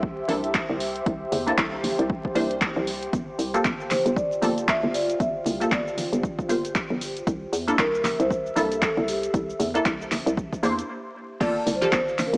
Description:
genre	deep house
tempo	116 BPM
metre	4/4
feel	swing 59% on 16ths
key	unclear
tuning	A4 = 440 Hz
part	hollow knocking FM bass	bass	0.0-12.4 s	G1 to E2	-28 LUFS	equal	sidechain pumping
part	electronic kick drum	drums	0.0-12.0 s	none	-28 LUFS	equal	overdrive
part	airy breathy pad	texture	0.0-12.4 s	F4 to F5	-32 LUFS	equal	chorus, sidechain pumping
part	filtered dub chord stab	stabs	0.3-12.0 s	Bb3 to C5	-27 LUFS	equal	phaser, lush chorus, sidechain pumping, tape echo
part	punchy analog drum machine	drums	0.3-12.4 s	cabasa, crash cymbal, handclaps, hi-hat	-28 LUFS	equal	overdrive
part	congas	percussion	0.3-12.3 s	none	-32 LUFS	equal	sidechain pumping on perc
part	marimba with medium mallets	melody	3.9-12.4 s	G4 to E5	-26 LUFS	equal	none
room	moderate lush hall reverb, RT60 2.0 s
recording	vinyl crackle, small speaker sound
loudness	-22 LUFS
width	side -25 dB against mid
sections	0.0-11.4 A section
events	stop 10.9-11.4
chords	0.0 C13; 3.1 Gm9; 7.3 C13; 11.4 Gm9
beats	0.03 0.55 | 1.06 1.58 2.10 2.61 | 3.13 3.65 4.17 4.68 | 5.20 5.72 6.24 6.75 | 7.27 7.79 8.30 8.82 | 9.34 9.86 10.37 10.89 | 11.41 11.92

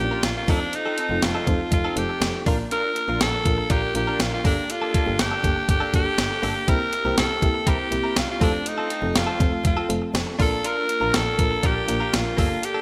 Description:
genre	1980s-style pop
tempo	121 BPM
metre	4/4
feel	straight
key	Bb major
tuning	A4 = 437 Hz
part	raspy alto saxophone	melody	0.0-12.8 s	D4 to Bb4	-27 LUFS	equal	none
part	FM electric piano with tremolo	accompaniment	0.0-12.8 s	A3 to Bb4	-31 LUFS	equal	none
part	direct-recorded clean electric guitar	riff	0.0-12.8 s	Bb3 to Bb4	-34 LUFS	equal	analog chorus
part	warm double bass	bass	0.0-12.5 s	F1 to C2	-32 LUFS	equal	none
part	clean 12-bit digital drum machine	drums	0.2-12.7 s	hi-hat, kick drum, snare drum	-26 LUFS	equal	gated reverb
room	moderate lush hall reverb, RT60 2.5 s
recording	bright 1980s-style digital production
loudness	-23 LUFS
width	mono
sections	0.0-12.8 A section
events	none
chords	0.5 F7; 2.5 Bb; 4.4 Gmadd9; 6.7 C7; 8.4 F; 10.4 Bb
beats	0.23 | 0.73 1.22 1.72 2.22 | 2.71 3.21 3.70 4.20 | 4.70 5.19 5.69 6.18 | 6.68 7.17 7.67 8.17 | 8.66 9.16 9.65 10.15 | 10.65 11.14 11.64 12.13 | 12.63

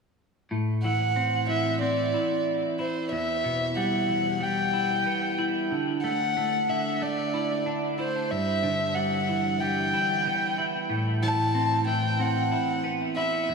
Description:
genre	rock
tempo	92 BPM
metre	4/4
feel	straight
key	A dorian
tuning	A4 = 439 Hz
part	twelve-string electric guitar	arpeggios	0.5-13.5 s	E2 to E4	-27 LUFS	equal	wide subtle chorus, tape echo
part	dark violin	melody	0.8-13.5 s	C5 to A5	-26 LUFS	equal	tape echo
room	wet huge ambient reverb, RT60 3.9 s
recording	dreamy mix soaked in reverb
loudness	-24 LUFS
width	side -4 dB against mid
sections	0.5-13.5 A section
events	none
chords	0.5 Am; 3.1 Em; 5.7 Dsus2; 8.3 G6; 10.9 Amadd9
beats	| 0.51 1.16 1.81 2.46 | 3.11 3.76 4.41 5.06 | 5.71 6.36 7.01 7.66 | 8.31 8.96 9.61 10.25 | 10.90 11.55 12.20 12.85 | 13.50

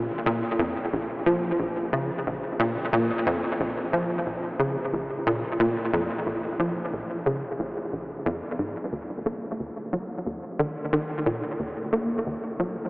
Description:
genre	ambient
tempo	90 BPM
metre	4/4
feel	straight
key	Bb minor, Eb minor from 8.9 s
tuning	A4 = 438 Hz
part	tight sequencer bass	solo	0.0-12.8 s	Bb1 to Bb3	-25 LUFS	equal	ensemble chorus, tape echo
room	wet huge ambient reverb, RT60 7.7 s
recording	worn, warbling old tape, cassette tape, warbly pitch drift, AM radio sound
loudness	-25 LUFS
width	side -24 dB against mid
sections	0.0-8.9 A section; 8.9-12.9 B section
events	none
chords	none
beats	0.26 | 0.93 1.59 2.26 2.93 | 3.60 4.26 4.93 5.59 | 6.26 6.93 7.59 8.26 | 8.93 9.60 10.26 10.93 | 11.60 12.26

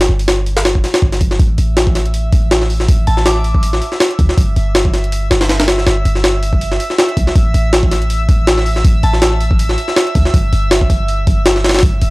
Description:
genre	drum and bass, jungle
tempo	161 BPM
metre	4/4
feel	swing 55% on 16ths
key	unclear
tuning	A4 = 440 Hz
part	warm 808-style bass	bass	0.0-12.1 s	G1 to D2	-15 LUFS	equal	tube saturation
part	jungle sampler-style drum kit	drums	0.0-12.1 s	hi-hat, kick drum, snare drum	-13 LUFS	equal	overdrive, small room reverb
part	drifting glass-harmonics texture	texture	1.7-12.1 s	E5 to E6	-24 LUFS	right 1 dB	chorus, built-in reverb
part	glassy synth bell	melody	3.1-3.8, 9.0-9.2 s	A5 to D6	-23 LUFS	left 1 dB	chorus, dub echo
room	little or no reverb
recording	dry, gritty hardware recording, transformer saturation, cassette tape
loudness	-11 LUFS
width	side -22 dB against mid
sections	0.0-12.1 A section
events	none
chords	0.0 N.C.; 1.4 A5; 4.4 C/G (rootless); 7.4 A5; 10.3 G5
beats	0.28 0.65 1.02 | 1.40 1.77 2.14 2.51 | 2.89 3.26 3.63 4.00 | 4.38 4.75 5.12 5.50 | 5.87 6.24 6.61 6.99 | 7.36 7.73 8.10 8.48 | 8.85 9.22 9.60 9.97 | 10.34 10.71 11.09 11.46 | 11.83

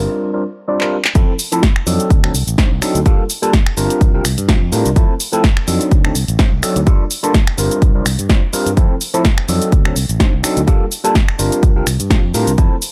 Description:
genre	filtered disco house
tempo	126 BPM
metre	4/4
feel	swing 55% on 16ths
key	F major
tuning	A4 = 441 Hz
part	overdriven tine electric piano	accompaniment	0.0-12.8 s	F3 to D5	-21 LUFS	equal	phaser, sidechain pumping, low-pass filter
part	fingered electric bass	bass	0.0-12.7 s	G1 to A2	-21 LUFS	equal	sidechain pumping, low-pass filter
part	punchy analog drum machine	drums	0.8-12.9 s	finger snaps, handclaps, hi-hat, shaker, snare drum	-22 LUFS	equal	overdrive, sidechain pumping on hats, sidechain pumping on perc
part	electronic kick drum	drums	1.2-12.7 s	none	-15 LUFS	equal	none
room	little or no reverb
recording	dry, gritty hardware recording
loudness	-15 LUFS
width	mono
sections	0.0-1.2 A section; 1.2-12.9 B section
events	filter sweep 0.0-1.2; drum fill 0.8-1.2; drop 1.2-12.9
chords	0.2 C9sus4; 1.2 Fmaj7; 2.1 D7b9; 3.1 Gm9; 4.0 C9sus4; 5.0 Fmaj7; 5.9 D7b9; 6.9 Gm9; 7.8 C9sus4; 8.8 Fmaj7; 9.7 D7b9; 10.7 Gm9; 11.6 C9sus4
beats	0.20 0.68 | 1.15 1.63 2.10 2.58 | 3.06 3.53 4.01 4.49 | 4.96 5.44 5.91 6.39 | 6.87 7.34 7.82 8.29 | 8.77 9.25 9.72 10.20 | 10.68 11.15 11.63 12.11 | 12.58

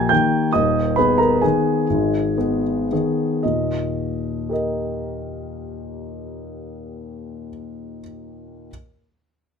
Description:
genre	classical, piano waltz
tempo	105-143 BPM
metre	3/4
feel	rubato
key	Eb major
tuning	A4 = 441 Hz
part	warm concert grand piano	solo	0.0-8.7 s	Eb1 to Ab6	-20 LUFS	left 1 dB	none
room	moderate studio reverb, RT60 0.8 s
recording	none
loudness	-18 LUFS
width	side -6 dB against mid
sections	0.0-3.5 A section; 3.5-6.5 B section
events	slowing down 0.0-3.5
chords	0.0 Eb; 0.5 Abm/Eb; 3.5 Eb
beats	0.12 | 0.55 0.98 1.44 | 1.90 2.38 2.92 | 3.46 3.97 4.49 | 5.00 5.50 6.03

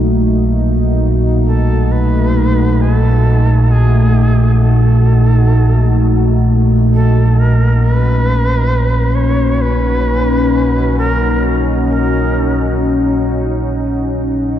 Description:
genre	dark ambient drone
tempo	free time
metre	none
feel	none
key	unclear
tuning	A4 = 441 Hz
part	deep dark ambient pad	sustained chords	0.0-14.6 s	A3 to Gb4	-16 LUFS	left 1 dB	chorus, built-in reverb
part	deep rumbling drone	drone	0.0-14.6 s	Bb1 to Bb2	-12 LUFS	equal	built-in reverb
part	bright reedy shakuhachi	melody	1.5-12.8 s	Ab4 to Db5	-21 LUFS	right 1 dB	diffuse ambient delay
room	wet cathedral reverb, RT60 4.8 s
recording	dark, warm production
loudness	-10 LUFS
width	side -11 dB against mid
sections	0.0-14.6 A section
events	fade-in on shakuhachi 0.0-14.6; fade-out 12.2-14.6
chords	0.0 Gbm; 7.3 Ebm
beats	free time

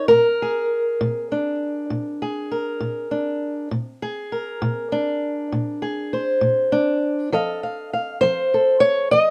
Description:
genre	acoustic country blues, solo or duo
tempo	67 BPM (dotted quarters)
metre	12/8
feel	straight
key	Bb mixolydian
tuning	A4 = 441 Hz
part	fingerpicked old ladder-braced acoustic guitar	solo	0.0-9.3 s	Bb2 to F5	-22 LUFS	equal	none
room	light reverb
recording	none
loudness	-22 LUFS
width	mono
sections	0.0-9.3 A section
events	none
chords	0.1 Bb7; 7.3 F7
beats	| 0.11 1.01 1.91 2.81 | 3.72 4.62 5.52 6.42 | 7.32 8.22 9.12

